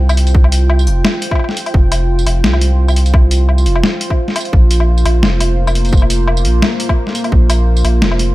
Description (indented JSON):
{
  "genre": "half-time drum and bass",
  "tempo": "172 BPM",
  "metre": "4/4",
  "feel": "swing 54% on 16ths, half-time",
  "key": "unclear",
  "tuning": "A4 = 439 Hz",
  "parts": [
    { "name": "dark analog pad", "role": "sustained chords", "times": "0.0-8.3 s", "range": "Bb3 to G5", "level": "-20 LUFS", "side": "equal", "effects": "chorus, vintage 12-bit sampler grit, sidechain pumping" },
    { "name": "saturated sub bass", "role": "bass", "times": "0.0-8.3 s", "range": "F1 to C2", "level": "-12 LUFS", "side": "equal", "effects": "tube saturation" },
    { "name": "boom bap sampler-style drum kit", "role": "drums", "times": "0.1-8.3 s", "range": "hi-hat, snare drum, tambourine, woodblock", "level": "-18 LUFS", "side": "left 1 dB", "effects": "overdrive, studio reverb" },
    { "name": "electronic kick drum", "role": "drums", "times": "0.3-7.4 s", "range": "none", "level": "-11 LUFS", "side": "equal", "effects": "studio reverb" }
  ],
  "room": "little or no reverb",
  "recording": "none",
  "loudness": "-10 LUFS",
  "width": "side -17 dB against mid",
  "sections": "0.0-8.3 A section",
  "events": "none",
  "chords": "0.0 F5; 4.5 Bb5"
}